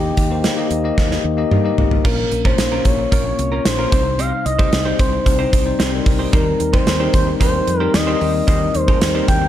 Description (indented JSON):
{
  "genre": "1980s-style pop",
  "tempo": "112 BPM",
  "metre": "4/4",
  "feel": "straight",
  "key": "unclear",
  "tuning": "A4 = 440 Hz",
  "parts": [
    { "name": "expressive synth lead", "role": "melody", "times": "0.0-9.5 s", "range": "G4 to G5", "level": "-22 LUFS", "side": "equal", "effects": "chorus, digital delay" },
    { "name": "bell-like tine electric piano", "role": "accompaniment", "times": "0.0-9.5 s", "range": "Bb2 to Eb5", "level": "-21 LUFS", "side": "left 6 dB", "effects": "none" },
    { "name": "woody fretless electric bass", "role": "bass", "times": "0.0-9.5 s", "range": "Ab1 to G2", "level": "-22 LUFS", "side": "equal", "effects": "none" },
    { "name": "gated 80s drum kit", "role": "drums", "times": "0.2-9.4 s", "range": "crash cymbal, hi-hat, kick drum, snare drum, toms", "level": "-17 LUFS", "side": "right 1 dB", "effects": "none" },
    { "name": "direct-recorded clean electric guitar", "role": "riff", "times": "2.0-9.5 s", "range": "Bb3 to C5", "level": "-28 LUFS", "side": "right 6 dB", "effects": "lush chorus, digital delay" }
  ],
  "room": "light reverb, small room ambience",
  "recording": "dark, warm production",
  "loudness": "-14 LUFS",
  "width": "side -11 dB against mid",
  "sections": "0.0-2.0 A section; 2.0-9.5 B section",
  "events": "drum fill 1.0-2.0",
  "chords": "0.0 Eb; 2.0 Bbm; 3.9 Cm; 6.3 Eb6",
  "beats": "0.44 0.98 1.51 | 2.05 2.58 3.12 3.66 | 4.19 4.73 5.26 5.80 | 6.33 6.87 7.41 7.94 | 8.48 9.01"
}